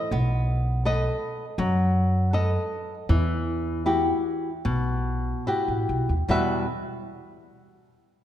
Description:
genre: fado-style ballad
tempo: 72-82 BPM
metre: 4/4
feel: rubato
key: E harmonic minor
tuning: A4 = 442 Hz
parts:
  - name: flamenco guitar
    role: accompaniment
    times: 0.0-6.7 s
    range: E2 to E5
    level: -25 LUFS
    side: left 1 dB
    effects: none
  - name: upright bass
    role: bass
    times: 0.1-6.6 s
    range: A1 to F#2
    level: -25 LUFS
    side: equal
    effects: none
room: moderate concert hall reverb, RT60 2.2 s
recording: minimal, uncompressed stereo recording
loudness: -23 LUFS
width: side -11 dB against mid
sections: 0.0-6.3 A section; 6.3-8.2 B section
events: none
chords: 0.1 B7; 3.1 Emadd9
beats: | 0.12 0.85 1.58 2.33 | 3.08 3.85 4.65 5.47 | 6.28

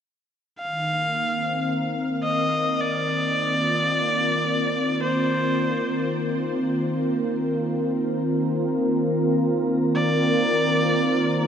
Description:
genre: ambient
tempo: free time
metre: none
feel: none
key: C minor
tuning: A4 = 440 Hz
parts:
  - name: warm electric violin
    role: melody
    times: 0.6-11.5 s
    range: C5 to F5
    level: -25 LUFS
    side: left 1 dB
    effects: shimmer reverb, diffuse ambient delay
  - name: warm analog pad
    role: sustained chords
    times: 0.6-11.5 s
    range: Eb3 to Bb4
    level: -22 LUFS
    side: equal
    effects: wide subtle chorus, shimmer reverb
room: wet huge ambient reverb, RT60 7.6 s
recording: none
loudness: -21 LUFS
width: side -8 dB against mid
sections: 0.6-11.5 A section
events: filter sweep on analog synth pad 0.6-11.5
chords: 0.6 Cm7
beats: free time

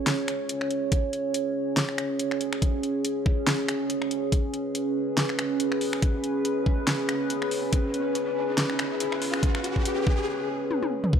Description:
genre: deep dubstep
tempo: 141 BPM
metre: 4/4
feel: swing 56% on 16ths, half-time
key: unclear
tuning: A4 = 440 Hz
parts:
  - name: dark analog pad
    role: sustained chords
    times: 0.0-11.2 s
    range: C#4 to C#5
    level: -27 LUFS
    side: right 1 dB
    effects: chorus, phaser
  - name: saturated sub bass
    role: bass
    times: 0.0-11.2 s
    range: C#2 to D2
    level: -47 LUFS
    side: equal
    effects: none
  - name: deep house drum kit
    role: drums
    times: 0.1-11.1 s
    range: finger snaps, hi-hat, snare drum, toms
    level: -28 LUFS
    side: left 1 dB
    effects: overdrive
  - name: electronic kick drum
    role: drums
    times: 0.9-11.2 s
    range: none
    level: -24 LUFS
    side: equal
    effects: overdrive
  - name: riser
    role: sound effects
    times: 6.8-10.3 s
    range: none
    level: -35 LUFS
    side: left 1 dB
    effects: none
room: light reverb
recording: dry, gritty hardware recording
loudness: -24 LUFS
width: side -8 dB against mid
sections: 0.0-11.1 A section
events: build-up 0.0-11.1; riser 6.8-10.3; break 10.3-11.1; drum fill 10.7-11.1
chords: 0.0 C#5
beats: 0.07 0.49 | 0.92 1.34 1.77 2.19 | 2.62 3.05 3.47 3.90 | 4.32 4.75 5.17 5.60 | 6.03 6.45 6.88 7.30 | 7.73 8.15 8.58 9.00 | 9.43 9.86 10.28 10.71 | 11.13

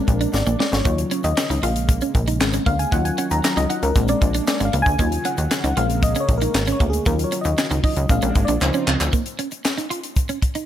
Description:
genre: early-eighties boogie funk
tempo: 116 BPM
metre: 4/4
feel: straight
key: Eb dorian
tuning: A4 = 440 Hz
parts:
  - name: FM electric piano with soft pad layer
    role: accompaniment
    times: 0.0-9.1 s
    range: F3 to Bb5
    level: -24 LUFS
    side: left 2 dB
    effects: chorus
  - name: brassy analog pad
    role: sustained chords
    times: 0.0-9.1 s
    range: Db3 to F4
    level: -30 LUFS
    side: equal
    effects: chorus
  - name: clean electric guitar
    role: riff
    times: 0.0-10.6 s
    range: Ab3 to F4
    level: -27 LUFS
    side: right 6 dB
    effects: analog chorus
  - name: plucky analog bass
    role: bass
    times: 0.1-9.1 s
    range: Ab1 to Eb2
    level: -22 LUFS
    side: equal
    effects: none
  - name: tight funk drum kit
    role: drums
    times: 0.1-10.7 s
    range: handclaps, hi-hat, kick drum, snare drum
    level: -22 LUFS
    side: equal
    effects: none
  - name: egg shaker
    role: percussion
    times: 0.1-10.7 s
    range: none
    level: -37 LUFS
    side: left 12 dB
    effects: none
room: little or no reverb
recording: none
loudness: -18 LUFS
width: side -11 dB against mid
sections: 0.0-9.1 A section; 9.1-10.7 B section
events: FM electric piano solo 0.0-9.1; drum fill 0.3-0.9, 8.6-9.1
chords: 0.0 Bb7; 0.9 Ebm7; 1.6 Bbm7; 2.9 Ebm7; 4.0 Bb7; 5.0 Ebm7; 5.8 Bbm7; 7.1 Ebm7; 8.1 Bb7; 8.6 Dbmaj9; 9.1 Eb5; 9.9 Bbm (rootless)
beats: 0.34 | 0.85 1.37 1.89 2.41 | 2.92 3.44 3.96 4.48 | 4.99 5.51 6.03 6.54 | 7.06 7.58 8.10 8.61 | 9.13 9.65 10.16

